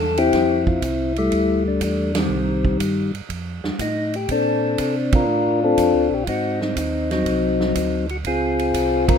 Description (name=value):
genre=soul jazz organ trio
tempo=121 BPM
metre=4/4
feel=swing 69% on 8ths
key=F major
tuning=A4 = 440 Hz
part: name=percussive tonewheel organ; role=melody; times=0.0-9.2 s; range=Eb3 to Bb4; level=-19 LUFS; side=left 2 dB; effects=slow rotary speaker
part: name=mellow tonewheel organ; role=bass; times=0.0-9.2 s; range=Bb1 to C3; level=-27 LUFS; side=right 2 dB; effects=slow rotary speaker
part: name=swinging big-band drum kit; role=drums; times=0.2-9.2 s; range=hi-hat, kick drum, ride cymbal, snare drum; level=-26 LUFS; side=right 3 dB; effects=none
room=light reverb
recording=minimal, uncompressed stereo recording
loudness=-18 LUFS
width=side -7 dB against mid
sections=0.3-9.2 A section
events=band accent 2.1, 5.0, 9.0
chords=0.3 Fmaj9; 2.3 Cm; 3.3 F; 4.3 Bbmaj9; 6.3 Ab7; 8.2 Dbmaj7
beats=| 0.33 0.82 1.32 1.81 | 2.31 2.80 3.30 3.79 | 4.29 4.78 5.28 5.77 | 6.27 6.76 7.26 7.75 | 8.25 8.74